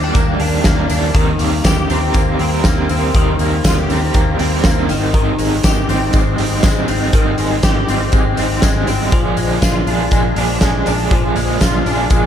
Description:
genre	jangly indie pop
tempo	120 BPM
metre	4/4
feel	straight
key	unclear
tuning	A4 = 438 Hz
part	raw garage guitar	accompaniment	0.0-12.3 s	Ab2 to Bb4	-20 LUFS	right 4 dB	overdrive, tremolo
part	direct-recorded clean electric guitar	arpeggios	0.0-12.3 s	Eb3 to G4	-20 LUFS	left 3 dB	ensemble chorus
part	vintage muted fingered electric bass	bass	0.0-12.3 s	Ab1 to Eb2	-20 LUFS	equal	none
part	big rock drum kit	drums	0.1-12.2 s	hi-hat, kick drum, snare drum	-16 LUFS	equal	none
part	tambourine	percussion	0.2-12.2 s	none	-32 LUFS	left 7 dB	none
room	light reverb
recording	none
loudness	-13 LUFS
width	side -9 dB against mid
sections	0.0-12.3 A section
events	none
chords	0.0 Ebmaj7; 1.1 Cm7/Eb; 4.9 Abmaj7; 9.1 Bb7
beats	0.15 0.65 | 1.15 1.65 2.15 2.65 | 3.15 3.64 4.14 4.64 | 5.14 5.64 6.14 6.64 | 7.13 7.63 8.13 8.63 | 9.13 9.62 10.12 10.62 | 11.12 11.61 12.11

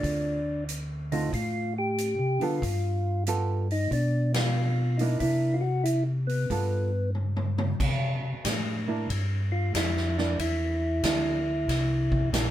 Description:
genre	soul jazz organ trio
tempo	93 BPM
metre	4/4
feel	swing 67% on 8ths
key	unclear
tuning	A4 = 441 Hz
part	percussive tonewheel organ	melody	0.0-12.3 s	B3 to G4	-29 LUFS	equal	slow rotary speaker
part	hollow-body jazz guitar	accompaniment	0.0-12.5 s	D3 to A4	-32 LUFS	right 4 dB	none
part	mellow tonewheel organ	bass	0.0-12.5 s	Bb1 to D3	-28 LUFS	equal	none
part	swinging big-band drum kit	drums	0.0-12.5 s	crash cymbal, hi-hat, kick drum, ride cymbal, snare drum, toms	-32 LUFS	equal	none
room	moderate studio reverb, RT60 0.5 s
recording	band playing live in one room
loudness	-25 LUFS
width	side -12 dB against mid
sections	0.0-7.8 A section; 7.8-12.5 B section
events	band accent 4.2-4.6; drum fill 7.2-7.8; tonewheel organ solo 7.8-12.5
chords	0.0 Dm7; 2.6 G9; 5.2 C9; 6.5 G9; 7.8 C9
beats	| 0.03 0.68 1.32 1.97 | 2.62 3.27 3.91 4.56 | 5.21 5.86 6.50 7.15 | 7.80 8.45 9.09 9.74 | 10.39 11.04 11.68 12.33

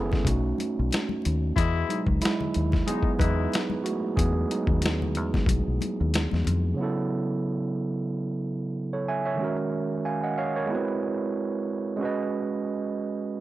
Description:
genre	R&B, neo-soul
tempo	92 BPM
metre	4/4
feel	swing 56% on 16ths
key	E major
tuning	A4 = 440 Hz
part	overdriven tine electric piano	accompaniment	0.0-13.4 s	C#3 to G#5	-27 LUFS	right 3 dB	none
part	deep dub fingered electric bass	bass	0.0-6.7 s	F#1 to F2	-26 LUFS	left 1 dB	none
part	boom bap sampler-style drum kit	drums	0.1-6.6 s	hi-hat, kick drum, snare drum	-26 LUFS	left 1 dB	none
part	congas	percussion	0.1-6.6 s	none	-36 LUFS	left 7 dB	none
part	warm horn section	stabs	1.6-3.7 s	B2 to E4	-30 LUFS	left 8 dB	none
room	little or no reverb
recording	dry, close 1970s-style studio recording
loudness	-24 LUFS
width	side -15 dB against mid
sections	0.0-6.8 A section; 6.8-13.4 B section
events	tine electric piano solo 0.0-6.8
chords	0.3 B7; 1.6 Emaj7; 6.8 F#m7; 9.4 D#m7; 10.7 G#7alt; 12.0 C#5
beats	0.26 0.91 | 1.57 2.22 2.87 3.52 | 4.17 4.83 5.48 6.13 | 6.78 7.43 8.09 8.74 | 9.39 10.04 10.70 11.35 | 12.00 12.65 13.30

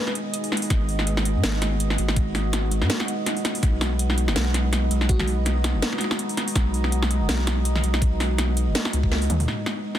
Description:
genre	half-time drum and bass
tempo	164 BPM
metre	4/4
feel	swing 56% on 16ths, half-time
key	unclear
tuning	A4 = 440 Hz
part	bell-like FM electric piano	melody	0.0-0.1, 5.1-5.3 s	F#4 to B4	-37 LUFS	left 2 dB	chorus, ping-pong delay
part	deep dark ambient pad	sustained chords	0.0-10.0 s	B3 to D#5	-31 LUFS	equal	chorus, built-in reverb, sidechain pumping
part	buzzing kalimba	arpeggios	0.0-9.5 s	F#3 to D#4	-31 LUFS	right 2 dB	dub echo
part	drum and bass drum kit	drums	0.1-10.0 s	hi-hat, snare drum, toms	-26 LUFS	equal	soft clipping on snare
part	saturated sub bass	bass	0.7-9.5 s	F#1 to G#2	-23 LUFS	equal	none
part	electronic kick drum	drums	0.7-9.1 s	none	-22 LUFS	equal	none
room	light reverb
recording	dense, heavily limited modern master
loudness	-20 LUFS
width	side -11 dB against mid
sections	0.0-9.5 A section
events	drop 0.0-9.5; drum fill 9.1-9.5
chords	0.0 G#m; 3.6 B; 9.5 G#m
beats	0.34 | 0.70 1.07 1.43 1.80 | 2.17 2.53 2.90 3.26 | 3.63 3.99 4.36 4.73 | 5.09 5.46 5.82 6.19 | 6.55 6.92 7.29 7.65 | 8.02 8.38 8.75 9.12 | 9.48 9.85

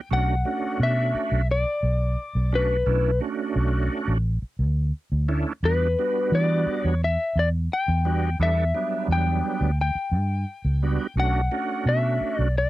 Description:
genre	straight-eighth soul blues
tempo	87 BPM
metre	4/4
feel	straight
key	B minor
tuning	A4 = 442 Hz
part	electric slide guitar	melody	0.0-12.7 s	B4 to G5	-26 LUFS	left 3 dB	none
part	bright tonewheel organ	accompaniment	0.1-12.5 s	F#3 to A4	-28 LUFS	right 6 dB	slow rotary speaker, chorus vibrato
part	vintage muted fingered electric bass	bass	0.1-12.7 s	A1 to E3	-22 LUFS	equal	none
room	little or no reverb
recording	dry, close 1970s-style studio recording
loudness	-21 LUFS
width	side -16 dB against mid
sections	0.0-12.7 A section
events	none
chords	0.1 Bm7; 5.6 Em7; 11.2 Bm7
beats	| 0.11 0.80 1.49 2.18 | 2.87 3.56 4.25 4.94 | 5.63 6.32 7.01 7.71 | 8.40 9.09 9.78 10.47 | 11.17 11.86 12.55

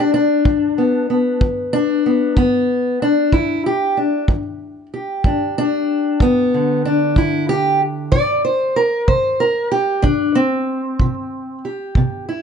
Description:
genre	acoustic country blues, solo or duo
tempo	63 BPM (dotted quarters)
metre	12/8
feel	straight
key	G major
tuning	A4 = 441 Hz
part	fingerpicked steel-string acoustic guitar	melody	0.0-12.4 s	G2 to D5	-16 LUFS	left 1 dB	none
part	kick drum	drums	0.5-12.1 s	none	-18 LUFS	equal	none
room	moderate studio reverb, RT60 0.6 s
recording	dark, warm production, nothing above 10.8 kHz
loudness	-15 LUFS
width	side -7 dB against mid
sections	0.0-12.4 A section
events	steel-string acoustic guitar solo 0.0-12.4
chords	0.5 G; 8.1 C5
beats	| 0.45 1.41 2.37 3.32 | 4.28 5.24 6.20 7.16 | 8.11 9.07 10.03 10.99 | 11.95

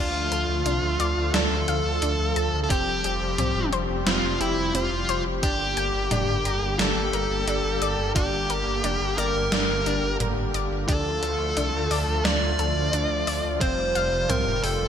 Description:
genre	synthwave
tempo	88 BPM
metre	4/4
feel	straight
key	D minor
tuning	A4 = 439 Hz
part	dark smooth lead guitar	melody	0.0-14.9 s	E4 to D5	-26 LUFS	equal	overdrive, digital delay
part	warm analog pad	sustained chords	0.0-14.9 s	C3 to G4	-30 LUFS	left 1 dB	chorus, tremolo, sidechain pumping
part	analog pluck	arpeggios	0.0-14.9 s	C4 to Bb5	-32 LUFS	left 2 dB	chorus, ping-pong delay
part	dark detuned saw bass	bass	0.0-14.9 s	F1 to D2	-29 LUFS	equal	sidechain pumping
part	gated 80s digital drum machine	drums	0.3-14.8 s	hi-hat, snare drum, toms	-28 LUFS	right 1 dB	gated reverb, gated reverb snare
part	electronic kick drum	drums	2.7-13.7 s	none	-26 LUFS	equal	none
room	moderate lush hall reverb, RT60 2.6 s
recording	bright 1980s-style digital production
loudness	-22 LUFS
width	side -8 dB against mid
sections	0.0-14.9 A section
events	none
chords	0.0 Dm; 2.7 Fsus2; 5.4 Gm; 10.9 Dm; 13.6 Fsus2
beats	0.66 1.34 2.02 | 2.70 3.38 4.07 4.75 | 5.43 6.11 6.79 7.48 | 8.16 8.84 9.52 10.20 | 10.88 11.57 12.25 12.93 | 13.61 14.29

